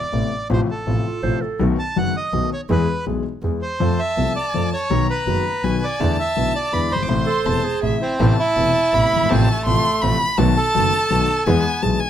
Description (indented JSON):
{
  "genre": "tango",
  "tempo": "164 BPM",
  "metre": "3/4",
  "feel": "rubato",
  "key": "A harmonic minor",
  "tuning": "A4 = 440 Hz",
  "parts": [
    { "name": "bandoneon", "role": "melody", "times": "0.0-11.8 s", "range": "A3 to A5", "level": "-22 LUFS", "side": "right 2 dB", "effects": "none" },
    { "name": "warm concert grand piano", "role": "accompaniment", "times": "0.1-12.0 s", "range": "E1 to A4", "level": "-22 LUFS", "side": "left 4 dB", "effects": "none" },
    { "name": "clear double bass", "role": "bass", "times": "0.1-12.0 s", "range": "E1 to F2", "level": "-23 LUFS", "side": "right 2 dB", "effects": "none" },
    { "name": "warm clarinet", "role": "second line", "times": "1.1-1.7, 7.3-8.2 s", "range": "E4 to C5", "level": "-24 LUFS", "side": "right 7 dB", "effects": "none" },
    { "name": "warm violin", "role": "second line", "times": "3.8-12.1 s", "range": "E5 to D6", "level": "-24 LUFS", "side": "left 2 dB", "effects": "none" }
  ],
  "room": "light reverb",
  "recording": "close, detailed microphones",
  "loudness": "-17 LUFS",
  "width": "side -10 dB against mid",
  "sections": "0.0-8.2 A section; 8.2-12.1 B section",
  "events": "none",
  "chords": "0.0 Amadd9; 0.5 F/A; 1.6 B7; 2.7 E; 3.8 F; 4.9 B; 6.0 E7sus4; 6.7 E7; 7.1 Am; 8.2 Amadd9; 9.3 F/A; 10.4 B7; 11.5 E"
}